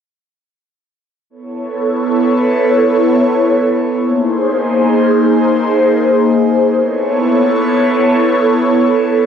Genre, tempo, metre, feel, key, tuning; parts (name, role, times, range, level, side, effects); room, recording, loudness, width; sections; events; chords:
drum and bass; free time; A4 = 442 Hz
airy breathy pad; sustained chords; 1.3-9.3 s; A#3 to C#5; -11 LUFS; equal; chorus, phaser
wet spring reverb, RT60 2.7 s; -11 LUFS; side -8 dB against mid
1.3-9.3 A section
1.3 B9sus4; 4.0 A#9sus4; 6.8 B9sus4